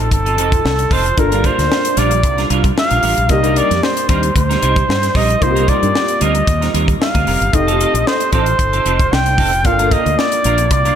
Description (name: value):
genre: polished 1980s jazz-funk pop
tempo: 113 BPM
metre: 4/4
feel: swing 54% on 16ths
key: C dorian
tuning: A4 = 440 Hz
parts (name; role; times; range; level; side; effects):
- breathy flugelhorn; melody; 0.0-11.0 s; A4 to G5; -17 LUFS; equal; slapback echo, digital delay
- warm grand piano; accompaniment; 0.0-11.0 s; A3 to A4; -22 LUFS; left 2 dB; ensemble chorus, slapback echo
- semi-hollow electric guitar; riff; 0.0-11.0 s; F3 to Bb4; -21 LUFS; right 5 dB; ensemble chorus, slapback echo
- mellow fretless electric bass; bass; 0.0-10.9 s; F1 to G2; -18 LUFS; equal; ensemble chorus
- tight funk drum kit; drums; 0.1-11.0 s; hi-hat, kick drum, snare drum; -18 LUFS; left 1 dB; none
room: moderate lush hall reverb, RT60 1.8 s, studio ambience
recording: big arena sound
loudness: -12 LUFS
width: side -9 dB against mid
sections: 0.0-11.0 A section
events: none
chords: 0.0 F7; 1.2 Gm7; 3.3 Cm7; 7.5 F7; 9.7 Gm7